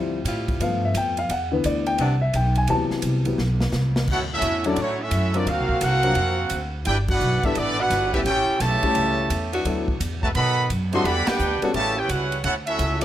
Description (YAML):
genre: jazz, big band swing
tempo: 172 BPM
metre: 4/4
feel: swing 65% on 8ths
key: D major from 4.1 s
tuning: A4 = 440 Hz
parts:
  - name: warm concert grand piano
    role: accompaniment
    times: 0.0-13.0 s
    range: C3 to A5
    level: -25 LUFS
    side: left 3 dB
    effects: none
  - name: upright bass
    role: bass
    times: 0.0-13.0 s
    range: G1 to B2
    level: -25 LUFS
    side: equal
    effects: none
  - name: warm saxophone section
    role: sustained chords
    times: 0.3-2.1, 4.4-11.7 s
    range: C3 to G4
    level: -30 LUFS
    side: equal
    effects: none
  - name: swinging big-band drum kit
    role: drums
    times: 0.3-13.0 s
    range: crash cymbal, hi-hat, kick drum, ride cymbal, snare drum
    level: -30 LUFS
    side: equal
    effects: none
  - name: bright trumpet section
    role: melody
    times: 4.1-13.0 s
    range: A3 to C6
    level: -24 LUFS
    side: right 1 dB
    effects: none
  - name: clear trombone section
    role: second line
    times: 4.1-13.0 s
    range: B2 to G4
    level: -28 LUFS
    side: right 2 dB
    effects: none
room: light reverb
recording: close, detailed microphones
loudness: -20 LUFS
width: side -12 dB against mid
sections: 0.0-4.1 A section; 4.1-13.0 B section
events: grand piano solo 0.0-4.1; drum fill 3.4-4.1; band accent 7.0, 11.2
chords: 0.0 Dm11; 0.6 G7; 1.3 Cmaj9; 2.7 D13; 4.1 Dmaj9; 5.5 D7alt; 6.9 G69; 8.3 A7; 9.7 D69; 10.3 B7b9; 11.0 Em11; 11.7 A13; 12.4 Dmaj9